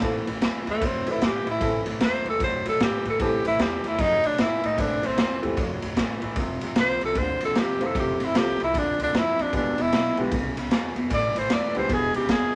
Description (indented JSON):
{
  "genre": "electric blues shuffle",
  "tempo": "152 BPM",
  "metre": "4/4",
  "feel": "swing 63% on 8ths",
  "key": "A minor",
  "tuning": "A4 = 442 Hz",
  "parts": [
    { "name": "dark upright piano", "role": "accompaniment", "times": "0.0-12.3 s", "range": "E3 to B4", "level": "-33 LUFS", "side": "equal", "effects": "none" },
    { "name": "electric guitar through a small old amp", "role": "riff", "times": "0.0-12.5 s", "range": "E2 to F#3", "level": "-33 LUFS", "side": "equal", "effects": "none" },
    { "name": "upright bass", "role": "bass", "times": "0.0-12.5 s", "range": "E1 to A2", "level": "-38 LUFS", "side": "equal", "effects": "none" },
    { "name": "raw garage drum kit", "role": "drums", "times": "0.0-12.4 s", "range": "kick drum, ride cymbal, snare drum", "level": "-29 LUFS", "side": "equal", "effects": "none" },
    { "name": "breathy tenor saxophone", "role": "melody", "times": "0.7-12.6 s", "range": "A3 to D5", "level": "-27 LUFS", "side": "equal", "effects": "none" }
  ],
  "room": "moderate small room reverb, RT60 0.5 s",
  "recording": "none",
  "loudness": "-24 LUFS",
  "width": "mono",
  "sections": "0.0-12.6 A section",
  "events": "tenor saxophone solo 0.0-12.6",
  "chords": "0.0 Am; 6.4 Fmaj7; 9.5 E7#9; 11.1 A5; 11.9 E7#9"
}